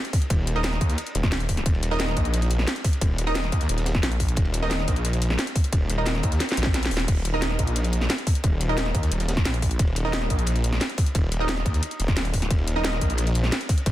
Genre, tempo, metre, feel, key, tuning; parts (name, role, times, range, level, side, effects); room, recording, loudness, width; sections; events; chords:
dark technical drum and bass; 177 BPM; 4/4; straight; A4 = 440 Hz
orchestra-hit-like synth stab; stabs; 0.0-13.9 s; Eb4 to Eb5; -30 LUFS; right 2 dB; built-in reverb, tape echo
drum and bass drum kit; drums; 0.0-13.9 s; crash cymbal, hi-hat, snare drum; -28 LUFS; equal
crunchy breakbeat drum kit; drums; 0.1-13.9 s; ride cymbal, snare drum; -38 LUFS; equal
electronic kick drum; drums; 0.1-13.9 s; -23 LUFS; equal
snarling distorted saw bass; bass; 0.3-13.9 s; Eb1 to Eb2; -25 LUFS; equal; tube saturation, sidechain pumping
digital ambience; dense, heavily limited modern master; -21 LUFS; side -14 dB against mid
0.0-13.9 A section
drum fill 6.4-7.1; kick drops out 6.7-7.1
0.0 Eb5